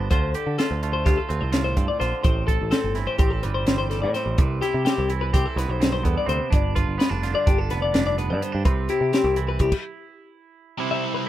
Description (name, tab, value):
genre	math rock and midwest emo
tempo	253 BPM (eighths)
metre	9/8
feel	straight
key	C major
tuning	A4 = 440 Hz
part	twangy electric guitar	accompaniment	0.0-11.3 s	E2 to A4	-29 LUFS	right 8 dB	none
part	twelve-string electric guitar	arpeggios	0.0-11.3 s	G4 to E5	-26 LUFS	left 6 dB	none
part	picked electric bass	bass	0.0-9.7 s	F1 to D3	-26 LUFS	right 1 dB	none
part	compact cocktail drum kit	drums	0.1-9.8 s	crash cymbal, hi-hat, kick drum, snare drum	-22 LUFS	equal	none
part	cranked stack guitar	riff	10.8-11.3 s	C3 to E4	-26 LUFS	equal	overdrive
room	studio reverb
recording	rough home demo mix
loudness	-20 LUFS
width	side -13 dB against mid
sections	0.0-10.8 A section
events	stop 9.7-10.8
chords	0.1 Dm7; 2.2 Am7; 4.4 Cmaj7; 6.5 G7; 8.7 Cmaj7